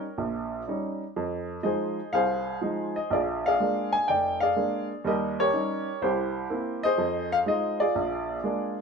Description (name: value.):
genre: solo jazz.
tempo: 124 BPM.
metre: 4/4.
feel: swing 68% on 8ths.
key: Eb major.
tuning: A4 = 442 Hz.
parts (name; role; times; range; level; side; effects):
warm upright piano; solo; 0.0-8.8 s; F1 to Ab5; -25 LUFS; equal; none.
room: moderate studio reverb, RT60 0.9 s.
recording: minimal, uncompressed stereo recording.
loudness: -25 LUFS.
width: side -5 dB against mid.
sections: 0.0-8.8 A section.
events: none.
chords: 0.0 Eb7; 1.2 Fm7; 3.1 Bb7; 5.0 Eb7; 6.0 C7; 7.0 Fm7; 8.0 Bb7.